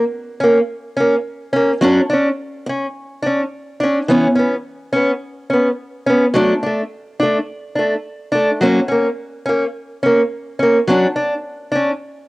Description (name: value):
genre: highlife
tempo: 106 BPM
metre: 4/4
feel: straight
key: unclear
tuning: A4 = 438 Hz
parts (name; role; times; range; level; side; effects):
- picked acoustic archtop guitar; solo; 0.0-11.9 s; E3 to D4; -15 LUFS; equal; cassette tape
room: moderate spring reverb, RT60 1.9 s, studio ambience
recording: home recording on cassette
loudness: -15 LUFS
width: side -21 dB against mid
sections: 0.0-12.3 A section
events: none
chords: 0.0 F# (rootless); 1.8 Dmaj7(no3); 4.1 C#7(no3); 6.4 D5; 8.6 F# (rootless); 10.9 Dmaj7/F#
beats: 0.12 0.69 1.26 | 1.83 2.39 2.96 3.53 | 4.09 4.66 5.22 5.79 | 6.36 6.92 7.49 8.05 | 8.62 9.19 9.75 10.32 | 10.88 11.45